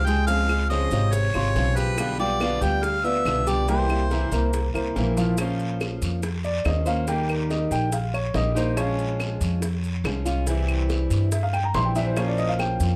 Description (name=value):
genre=latin, Cuban son and guajira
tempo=141 BPM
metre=4/4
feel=straight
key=unclear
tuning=A4 = 440 Hz
part: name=warm harmonica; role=melody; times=0.0-4.5 s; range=B4 to G5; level=-29 LUFS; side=equal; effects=none
part: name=fingerpicked steel-string acoustic guitar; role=accompaniment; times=0.0-13.0 s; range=B2 to C5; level=-31 LUFS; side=equal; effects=none
part: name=upright bass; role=bass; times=0.0-13.0 s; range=Ab1 to G2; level=-27 LUFS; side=equal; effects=none
part: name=dark baby grand piano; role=arpeggios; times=0.1-13.0 s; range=C3 to C6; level=-30 LUFS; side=equal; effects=none
part: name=bongos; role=percussion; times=0.1-12.8 s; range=none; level=-38 LUFS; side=equal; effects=none
part: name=guiro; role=percussion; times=0.1-13.0 s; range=none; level=-42 LUFS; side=equal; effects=none
part: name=maracas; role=percussion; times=0.1-13.0 s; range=none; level=-43 LUFS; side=equal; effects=none
part: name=claves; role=percussion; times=0.5-12.8 s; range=none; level=-37 LUFS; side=equal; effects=none
room=light reverb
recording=none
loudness=-24 LUFS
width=mono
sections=0.0-5.4 A section; 5.4-13.0 B section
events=grand piano solo 5.4-13.0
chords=0.3 Dbmaj7; 2.0 G7/B; 3.7 C7; 5.4 Bbmadd9; 7.1 Eb; 8.8 Bbm7; 10.5 C; 12.2 Bbmadd9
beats=| 0.28 0.70 1.13 1.56 | 1.98 2.41 2.83 3.26 | 3.68 4.11 4.53 4.96 | 5.38 5.80 6.23 6.66 | 7.08 7.50 7.93 8.35 | 8.78 9.20 9.63 10.05 | 10.47 10.90 11.32 11.74 | 12.17 12.59